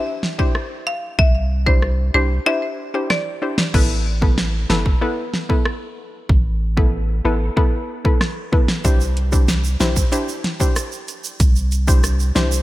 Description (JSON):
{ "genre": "dancehall", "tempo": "94 BPM", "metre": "4/4", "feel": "straight", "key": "A minor", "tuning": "A4 = 436 Hz", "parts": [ { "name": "marimba with hard mallets", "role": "melody", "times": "0.0-3.6 s", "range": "C5 to F5", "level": "-22 LUFS", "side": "left 1 dB", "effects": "digital delay" }, { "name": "soft round pluck", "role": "accompaniment", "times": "0.0-12.6 s", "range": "B3 to C5", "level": "-24 LUFS", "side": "left 2 dB", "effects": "chorus" }, { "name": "pop drum kit", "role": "drums", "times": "0.2-12.5 s", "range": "crash cymbal, hi-hat, kick drum, rim click, snare drum", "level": "-18 LUFS", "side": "equal", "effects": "none" }, { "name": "punchy sub bass", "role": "bass", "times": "1.2-12.6 s", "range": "G1 to C2", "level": "-19 LUFS", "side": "equal", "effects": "none" }, { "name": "tube shaker", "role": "percussion", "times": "8.8-12.6 s", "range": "none", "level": "-29 LUFS", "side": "right 7 dB", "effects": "none" } ], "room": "digital ambience", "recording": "bright 1980s-style digital production", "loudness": "-16 LUFS", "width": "side -16 dB against mid", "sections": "0.0-3.7 A section; 3.7-12.6 B section", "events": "break 2.5-3.7", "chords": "0.0 Cadd9; 3.7 Asus2; 8.8 Cadd9" }